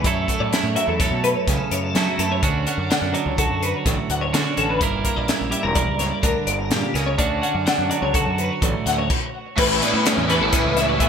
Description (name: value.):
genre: math rock and midwest emo.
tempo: 126 BPM.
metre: 5/4.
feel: straight.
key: D major.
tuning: A4 = 440 Hz.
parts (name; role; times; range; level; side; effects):
twelve-string electric guitar; accompaniment; 0.0-11.1 s; F#2 to Bb4; -24 LUFS; right 6 dB; none.
twelve-string electric guitar; arpeggios; 0.0-11.1 s; F#4 to F#5; -24 LUFS; left 3 dB; ensemble chorus, ping-pong delay.
growling fingered electric bass; bass; 0.0-11.1 s; E1 to F#3; -26 LUFS; equal; overdrive.
crisp fusion drum kit; drums; 0.0-11.1 s; crash cymbal, hi-hat, kick drum, snare drum; -23 LUFS; equal; gated reverb.
cranked stack guitar; riff; 9.6-11.1 s; A2 to E4; -22 LUFS; left 1 dB; overdrive, ensemble chorus.
room: moderate plate reverb, RT60 1.8 s, small room ambience.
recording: bright 1980s-style digital production.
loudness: -18 LUFS.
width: side -7 dB against mid.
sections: 0.0-9.6 A section; 9.6-11.1 B section.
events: stop 9.1-9.6.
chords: 0.0 F#m7; 2.4 Dmaj7; 4.8 Gm6; 7.2 Dmaj7; 9.6 A9sus4.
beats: | 0.04 0.52 1.00 1.47 1.95 | 2.43 2.90 3.38 3.86 4.34 | 4.81 5.29 5.77 6.24 6.72 | 7.20 7.67 8.15 8.63 9.10 | 9.58 10.05 10.53 11.00.